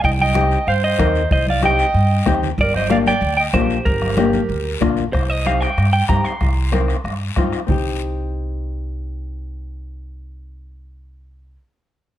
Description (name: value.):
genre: latin, cumbia.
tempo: 188 BPM.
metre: 4/4.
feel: straight.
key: C minor.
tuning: A4 = 440 Hz.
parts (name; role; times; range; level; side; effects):
clean electric guitar; melody; 0.0-7.4 s; Bb4 to C6; -20 LUFS; right 1 dB; spring reverb, slapback echo.
clear clarinet; second line; 0.0-4.9 s; G4 to F5; -25 LUFS; right 6 dB; none.
upright bass; bass; 0.0-11.6 s; G1 to G2; -21 LUFS; equal; none.
bombo; percussion; 0.0-7.8 s; none; -23 LUFS; equal; none.
congas; percussion; 0.0-7.8 s; none; -27 LUFS; right 2 dB; none.
guiro; percussion; 0.0-7.8 s; none; -34 LUFS; left 7 dB; none.
flamenco guitar; accompaniment; 0.3-11.6 s; Bb3 to Bb4; -22 LUFS; left 6 dB; none.
room: light reverb.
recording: close, detailed microphones.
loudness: -16 LUFS.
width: side -12 dB against mid.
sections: 0.0-5.1 A section; 5.1-7.7 B section; 7.7-10.2 C section.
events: none.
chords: 0.0 Cm; 2.6 Gm; 5.1 Cm.